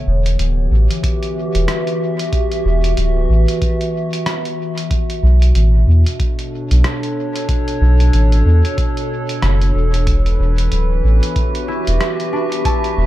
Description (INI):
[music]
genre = ambient dub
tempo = 93 BPM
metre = 4/4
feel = swing 59% on 16ths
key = E dorian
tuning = A4 = 438 Hz
[part]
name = warbly tape-like pad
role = sustained chords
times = 0.0-13.1 s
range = B2 to E5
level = -21 LUFS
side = equal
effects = chorus, built-in reverb
[part]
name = concert harp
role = arpeggios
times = 0.0-1.1, 11.7-13.1 s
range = A3 to A5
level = -27 LUFS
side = equal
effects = tape echo
[part]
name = soft dub sub bass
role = bass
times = 0.1-13.1 s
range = D1 to E2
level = -12 LUFS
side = equal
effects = none
[part]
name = lo-fi sampler-style drum kit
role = drums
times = 0.3-12.9 s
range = hi-hat, rim click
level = -27 LUFS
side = equal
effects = dub echo
[part]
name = electronic kick drum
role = drums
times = 1.0-12.8 s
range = none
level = -19 LUFS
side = equal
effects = none
[part]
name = drifting glass-harmonics texture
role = texture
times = 10.3-13.1 s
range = B4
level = -28 LUFS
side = right 2 dB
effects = chorus, built-in reverb
[sound]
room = digital ambience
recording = echo-heavy mix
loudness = -14 LUFS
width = side -14 dB against mid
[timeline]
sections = 0.0-13.1 A section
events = none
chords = 0.0 Emadd9; 4.9 Bm7; 10.1 Emadd9